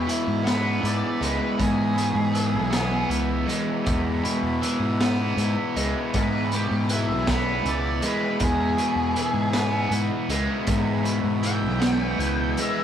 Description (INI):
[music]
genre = psychedelic rock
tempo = 53 BPM (dotted quarters)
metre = 6/8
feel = straight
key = E major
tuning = A4 = 440 Hz
[part]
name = octave-fuzz lead guitar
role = melody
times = 0.0-12.8 s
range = E4 to G5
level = -28 LUFS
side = right 1 dB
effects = distortion
[part]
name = tonewheel organ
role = sustained chords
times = 0.0-12.8 s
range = G#3 to B4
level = -34 LUFS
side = right 3 dB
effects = slow rotary speaker
[part]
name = overdriven electric guitar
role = riff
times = 0.0-12.8 s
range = E2 to B3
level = -25 LUFS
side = equal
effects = none
[part]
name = fuzz fingered electric bass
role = bass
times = 0.0-12.8 s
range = B1 to E3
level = -27 LUFS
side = left 1 dB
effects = overdrive
[part]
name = raw garage drum kit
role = drums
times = 0.1-12.8 s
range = hi-hat, kick drum, snare drum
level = -28 LUFS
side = equal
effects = none
[sound]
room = moderate small room reverb, RT60 0.5 s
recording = rough rehearsal-room recording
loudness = -21 LUFS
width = side -9 dB against mid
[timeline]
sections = 0.0-12.8 A section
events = lead electric guitar solo 0.0-12.8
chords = 0.0 E